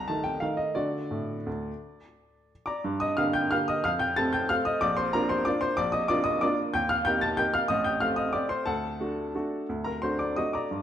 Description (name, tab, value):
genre	classical, piano waltz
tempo	167-199 BPM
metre	3/4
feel	rubato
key	unclear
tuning	A4 = 440 Hz
part	bright upright piano	solo	0.0-10.8 s	A1 to A6	-25 LUFS	equal	none
room	wet recital hall reverb, RT60 1.4 s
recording	dark, warm production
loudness	-25 LUFS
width	side -10 dB against mid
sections	0.0-2.8 A section; 2.8-10.8 B section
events	none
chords	0.0 Adim/C; 0.8 D; 2.8 Gm; 3.9 F; 4.8 Bb; 6.7 Eb; 7.7 Am7b5; 8.7 D